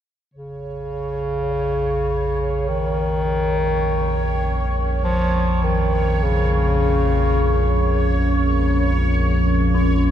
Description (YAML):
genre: dark ambient drone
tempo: free time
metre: none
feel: none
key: Bb minor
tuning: A4 = 443 Hz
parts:
  - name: clear bass clarinet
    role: melody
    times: 0.3-8.6 s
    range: Db3 to F3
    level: -22 LUFS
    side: left 1 dB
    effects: tape echo
  - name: deep dark ambient pad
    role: sustained chords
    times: 1.3-10.1 s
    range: Db4 to F5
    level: -28 LUFS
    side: right 1 dB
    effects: chorus, built-in reverb
  - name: deep rumbling drone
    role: drone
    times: 0.8-10.1 s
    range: Bb1 to F2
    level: -20 LUFS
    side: equal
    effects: built-in reverb, lush chorus
  - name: bubbling stepped-filter texture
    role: texture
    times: 0.6-10.1 s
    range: Db5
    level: -28 LUFS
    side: right 2 dB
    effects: chorus, built-in reverb
  - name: dark detuned synth bell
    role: arpeggios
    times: 9.7-10.1 s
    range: Db4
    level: -24 LUFS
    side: left 8 dB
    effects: chorus, tremolo
room: wet huge ambient reverb, RT60 7.3 s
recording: dark, warm production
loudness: -17 LUFS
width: side -10 dB against mid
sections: 0.3-10.1 A section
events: none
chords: 0.3 Bbm7